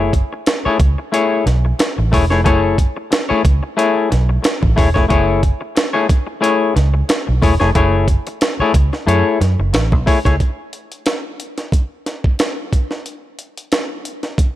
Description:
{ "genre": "funk", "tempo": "91 BPM", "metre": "4/4", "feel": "swing 56% on 16ths", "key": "F# minor", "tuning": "A4 = 440 Hz", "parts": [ { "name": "semi-hollow electric guitar", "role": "accompaniment", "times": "0.0-10.3 s", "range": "A3 to C#5", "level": "-17 LUFS", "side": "left 4 dB", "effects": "none" }, { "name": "vintage muted fingered electric bass", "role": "bass", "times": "0.0-10.4 s", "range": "E1 to F#2", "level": "-16 LUFS", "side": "right 1 dB", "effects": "none" }, { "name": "breakbeat sampler-style drum kit", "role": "drums", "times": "0.1-14.6 s", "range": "hi-hat, kick drum, snare drum", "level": "-17 LUFS", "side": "right 1 dB", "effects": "none" } ], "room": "little or no reverb", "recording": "none", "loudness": "-14 LUFS", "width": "side -14 dB against mid", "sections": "0.0-10.4 A section; 10.4-14.6 B section", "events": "none", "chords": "0.0 F#m9; 10.4 N.C.", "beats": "0.47 1.13 1.80 | 2.46 3.12 3.78 4.44 | 5.11 5.77 6.43 7.09 | 7.75 8.41 9.08 9.74 | 10.40 11.06 11.73 12.39 | 13.06 13.72 14.39" }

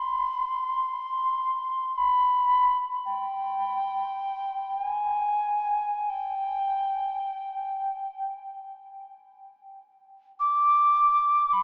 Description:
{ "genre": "world meditative, free-time meditation music", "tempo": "free time", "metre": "none", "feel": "none", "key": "unclear", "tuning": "A4 = 440 Hz", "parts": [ { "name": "breathy bright alto ocarina", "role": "solo", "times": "0.0-11.6 s", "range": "G5 to D6", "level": "-24 LUFS", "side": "equal", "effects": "diffuse ambient delay" } ], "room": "wet cathedral reverb, RT60 7.0 s", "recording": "in a vast, echoing space, small speaker sound", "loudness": "-23 LUFS", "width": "side -28 dB against mid", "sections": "0.0-11.6 A section", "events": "none", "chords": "none", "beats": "free time" }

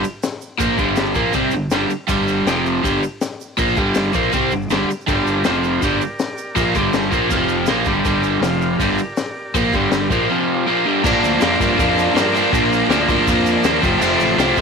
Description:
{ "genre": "garage rock duo or trio", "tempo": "161 BPM", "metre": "4/4", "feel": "straight", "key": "G minor", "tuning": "A4 = 440 Hz", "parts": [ { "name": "overdriven electric guitar", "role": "riff", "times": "0.0-14.6 s", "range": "F2 to D4", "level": "-16 LUFS", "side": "equal", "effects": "none" }, { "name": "fuzz fingered electric bass", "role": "bass", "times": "0.0-14.6 s", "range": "F1 to G2", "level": "-26 LUFS", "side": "equal", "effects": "overdrive" }, { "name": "tube shaker", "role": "percussion", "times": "0.0-14.6 s", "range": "none", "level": "-37 LUFS", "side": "right 14 dB", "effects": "none" }, { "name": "crunchy breakbeat drum kit", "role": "drums", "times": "0.2-14.6 s", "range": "crash cymbal, hi-hat, kick drum, snare drum", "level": "-24 LUFS", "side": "left 3 dB", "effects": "none" }, { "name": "combo organ", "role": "sustained chords", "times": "5.1-14.6 s", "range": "F4 to G5", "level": "-28 LUFS", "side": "right 1 dB", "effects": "none" } ], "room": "light reverb", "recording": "1960s-style stereo", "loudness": "-15 LUFS", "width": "side -5 dB against mid", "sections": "0.0-11.0 A section; 11.0-14.6 B section", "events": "none", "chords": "0.0 Gm; 2.5 F5; 2.8 Gm; 5.5 F5; 5.8 Gm; 7.3 F5; 7.7 Gm; 8.4 F5; 8.8 Gm; 10.3 F5; 10.7 Gm; 11.0 Bb; 13.8 F", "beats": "0.23 | 0.60 0.97 1.35 1.72 | 2.09 2.47 2.84 3.21 | 3.59 3.96 4.33 4.71 | 5.08 5.45 5.82 6.20 | 6.57 6.94 7.32 7.69 | 8.06 8.43 8.81 9.18 | 9.55 9.92 10.30 10.67 | 11.04 11.41 11.78 12.15 | 12.53 12.90 13.27 13.64 | 14.01 14.38" }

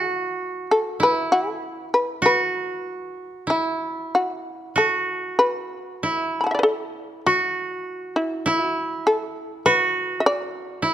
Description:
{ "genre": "japanese traditional, Japanese chamber music", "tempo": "46-52 BPM", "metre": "4/4", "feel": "rubato", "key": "E suspended pentatonic", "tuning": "A4 = 436 Hz", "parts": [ { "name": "shamisen", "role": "melody", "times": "0.0-10.9 s", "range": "E4 to B5", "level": "-21 LUFS", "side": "left 1 dB", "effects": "none" }, { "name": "koto", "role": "second line", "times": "0.0-10.9 s", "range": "E4 to F#4", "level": "-24 LUFS", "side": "right 2 dB", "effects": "none" } ], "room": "light reverb", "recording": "close, detailed microphones", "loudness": "-20 LUFS", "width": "side -11 dB against mid", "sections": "0.0-10.9 A section", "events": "none", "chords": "none", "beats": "1.00 2.22 3.48 | 4.76 6.01 7.25 8.46 | 9.66 10.84" }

